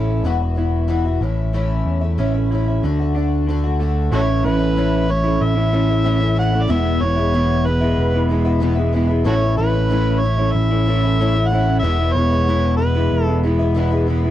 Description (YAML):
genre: rock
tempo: 93 BPM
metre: 4/4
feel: straight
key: A major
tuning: A4 = 439 Hz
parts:
  - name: picked twelve-string acoustic guitar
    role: accompaniment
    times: 0.0-14.3 s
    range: E2 to A4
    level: -25 LUFS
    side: left 7 dB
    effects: none
  - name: electric guitar through a small old amp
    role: riff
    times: 0.0-14.3 s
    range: E2 to E4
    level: -22 LUFS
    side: right 1 dB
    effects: none
  - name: picked electric bass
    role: bass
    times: 0.0-14.3 s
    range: E1 to E2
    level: -18 LUFS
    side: equal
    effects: none
  - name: overdriven harmonica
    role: melody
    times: 4.1-13.4 s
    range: F#4 to F#5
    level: -22 LUFS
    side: right 1 dB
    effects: none
  - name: mellow tonewheel organ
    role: sustained chords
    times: 4.1-14.3 s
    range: B3 to A4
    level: -30 LUFS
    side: right 4 dB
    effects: none
room: little or no reverb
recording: dry, close 1970s-style studio recording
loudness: -16 LUFS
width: side -12 dB against mid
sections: 0.0-4.1 A section; 4.1-14.3 B section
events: none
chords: 0.2 Esus2; 1.2 A; 2.8 D; 4.1 A; 6.7 E; 9.3 A; 11.8 E